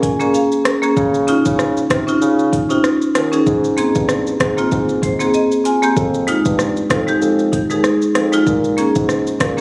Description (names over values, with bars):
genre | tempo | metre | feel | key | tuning
dancehall | 96 BPM | 4/4 | swing 56% on 16ths | F minor | A4 = 442 Hz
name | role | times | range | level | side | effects
marimba with hard mallets | accompaniment | 0.0-9.6 s | Ab3 to Ab5 | -15 LUFS | equal | sidechain pumping
dark bassoon | bass | 0.0-9.6 s | Eb2 to Db3 | -19 LUFS | equal | none
afro-pop drum kit | drums | 0.0-9.6 s | hi-hat, kick drum, rim click, shaker | -20 LUFS | equal | none
room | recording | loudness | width
light reverb, digital ambience | recorded on a phone in the room, club reverb, compression, faint mains hum | -13 LUFS | side -28 dB against mid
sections
0.0-9.6 A section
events
marimba fill 0.0-1.0, 4.7-6.0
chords
0.0 Bbm7; 1.0 Dbadd9; 3.5 Abadd9; 6.0 Fm7; 8.5 Bbm7